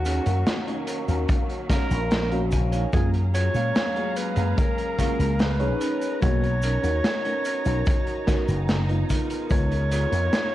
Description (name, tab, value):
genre	vaporwave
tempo	73 BPM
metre	4/4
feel	straight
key	Eb minor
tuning	A4 = 440 Hz
part	breathy alto saxophone	melody	0.0-10.5 s	Gb4 to C#5	-29 LUFS	equal	vintage 12-bit sampler grit, tape echo
part	rich symphonic string section	sustained chords	0.0-10.5 s	Db3 to Bb5	-36 LUFS	right 1 dB	vintage 12-bit sampler grit
part	slap bass with an envelope filter	bass	0.0-10.3 s	F#1 to Bb2	-24 LUFS	equal	none
part	clean electric guitar	riff	0.1-10.4 s	Bb3 to Ab5	-35 LUFS	right 2 dB	analog chorus, vintage 12-bit sampler grit, tape echo
part	raw garage drum kit	drums	0.1-10.5 s	cabasa, hi-hat, snare drum	-29 LUFS	equal	gated reverb
part	FM electric piano with soft pad layer	accompaniment	0.3-10.5 s	Ab3 to F5	-30 LUFS	left 1 dB	wide subtle chorus, tape echo
part	kick drum	drums	1.3-9.7 s	none	-24 LUFS	equal	none
room	light reverb, studio ambience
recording	cassette tape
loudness	-21 LUFS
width	side -14 dB against mid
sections	0.0-10.5 A section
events	clean electric guitar fill 1.3-2.9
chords	0.0 Ebm7; 2.9 Gbmaj9; 5.8 Bmaj9; 9.1 Db13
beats	0.47 1.29 2.11 | 2.93 3.75 4.58 5.40 | 6.22 7.04 7.86 8.69 | 9.51 10.33